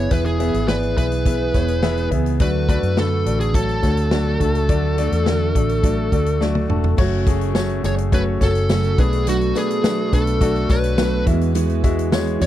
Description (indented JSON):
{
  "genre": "piano-driven pop",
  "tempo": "105 BPM",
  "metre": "4/4",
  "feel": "straight",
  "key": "unclear",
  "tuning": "A4 = 441 Hz",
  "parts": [
    { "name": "fuzz lead guitar", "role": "melody", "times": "0.0-12.5 s", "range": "F#4 to C#5", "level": "-24 LUFS", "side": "equal", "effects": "distortion, tape echo" },
    { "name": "clear concert grand piano", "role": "accompaniment", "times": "0.0-12.5 s", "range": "B2 to F#5", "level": "-24 LUFS", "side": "left 7 dB", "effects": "none" },
    { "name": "fingerpicked steel-string acoustic guitar", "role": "riff", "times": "0.0-12.5 s", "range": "F#2 to G#4", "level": "-24 LUFS", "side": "right 9 dB", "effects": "none" },
    { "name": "vintage muted fingered electric bass", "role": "bass", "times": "0.0-12.5 s", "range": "E1 to F#2", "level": "-21 LUFS", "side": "equal", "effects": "none" },
    { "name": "natural country drum kit", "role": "drums", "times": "0.1-12.5 s", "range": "crash cymbal, hi-hat, kick drum, snare drum, toms", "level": "-21 LUFS", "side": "equal", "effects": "none" },
    { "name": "tambourine", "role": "percussion", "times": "7.0-12.5 s", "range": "none", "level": "-41 LUFS", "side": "left 12 dB", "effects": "none" }
  ],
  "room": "little or no reverb",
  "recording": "dry, close 1970s-style studio recording",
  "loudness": "-16 LUFS",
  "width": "side -12 dB against mid",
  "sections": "0.0-7.0 A section; 7.0-12.5 B section",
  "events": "drum fill 6.4-7.0",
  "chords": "0.0 E; 2.4 D; 7.0 F#m; 9.0 Bm7; 11.3 Eadd9"
}